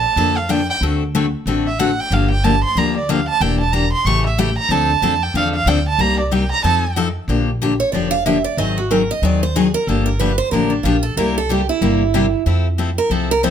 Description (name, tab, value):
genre	acoustic string swing (jazz manouche)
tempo	185 BPM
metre	4/4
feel	swing 60% on 8ths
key	unclear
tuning	A4 = 438 Hz
part	warm violin	melody	0.0-6.9 s	D5 to C#6	-19 LUFS	right 5 dB	none
part	upright bass	bass	0.0-13.5 s	E1 to F2	-20 LUFS	equal	none
part	picked steel-string acoustic guitar	accompaniment	0.2-13.5 s	C3 to A4	-19 LUFS	left 4 dB	none
part	picked steel-string acoustic guitar	second line	7.8-13.5 s	D4 to F5	-20 LUFS	right 5 dB	none
room	light reverb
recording	none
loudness	-15 LUFS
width	side -8 dB against mid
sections	0.0-7.3 A section; 7.3-13.5 A section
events	violin solo 0.0-7.3; steel-string acoustic guitar solo 7.3-13.5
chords	0.0 Bbmaj7; 0.8 D7; 2.1 Gm7; 3.4 Em7b5; 4.1 A7; 4.7 Dm9; 6.0 Cm7; 6.6 F7; 7.3 Bb6; 8.6 G#7; 9.9 Gm7; 11.2 C7; 12.5 Fmaj7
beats	0.17 0.49 | 0.81 1.14 1.46 1.78 | 2.11 2.43 2.76 3.08 | 3.40 3.73 4.05 4.38 | 4.70 5.02 5.34 5.67 | 5.99 6.32 6.64 6.96 | 7.29 7.61 7.93 8.26 | 8.58 8.90 9.23 9.55 | 9.88 10.20 10.52 10.85 | 11.17 11.49 11.81 12.14 | 12.46 12.78 13.11 13.43